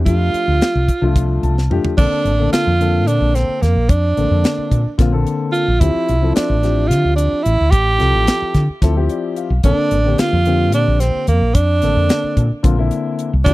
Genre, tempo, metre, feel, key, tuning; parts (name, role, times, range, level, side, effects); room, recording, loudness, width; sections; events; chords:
electric jazz fusion; 219 BPM (eighths); 7/8; straight; Bb lydian; A4 = 440 Hz
woody fretless electric bass; bass; 0.0-13.5 s; A1 to D3; -16 LUFS; equal
warm tenor saxophone; melody; 0.1-13.5 s; Bb3 to G4; -18 LUFS; right 2 dB
dark grand piano; accompaniment; 0.1-13.5 s; D3 to A5; -21 LUFS; left 5 dB
tight funk drum kit; drums; 0.1-13.5 s; crash cymbal, hi-hat, kick drum, snare drum, toms; -17 LUFS; equal
little or no reverb; dry, close 1970s-style studio recording; -13 LUFS; side -18 dB against mid
0.0-2.0 A section; 2.0-13.5 B section
grand piano fill 1.2-2.0, 8.8-9.6; drum fill 1.6-2.0
0.1 F69; 2.0 Bbmaj9; 5.8 Dm11; 9.6 Bbmaj9